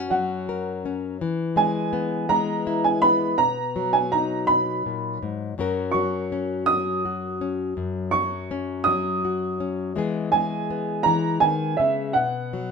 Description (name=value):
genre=acoustic folk duo or small band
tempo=55 BPM (dotted quarters)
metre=6/8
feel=straight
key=F# mixolydian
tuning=A4 = 442 Hz
part: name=warm upright piano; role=melody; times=0.0-12.7 s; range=E5 to D#6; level=-22 LUFS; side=right 4 dB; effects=none
part: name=nylon-string guitar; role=accompaniment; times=0.0-12.7 s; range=F#2 to A#4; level=-26 LUFS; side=left 4 dB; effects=none
room=light reverb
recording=minimal, uncompressed stereo recording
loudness=-21 LUFS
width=side -5 dB against mid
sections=0.0-12.7 A section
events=none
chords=0.0 F#; 1.2 E; 3.4 B; 5.6 F#; 10.0 E; 12.2 B5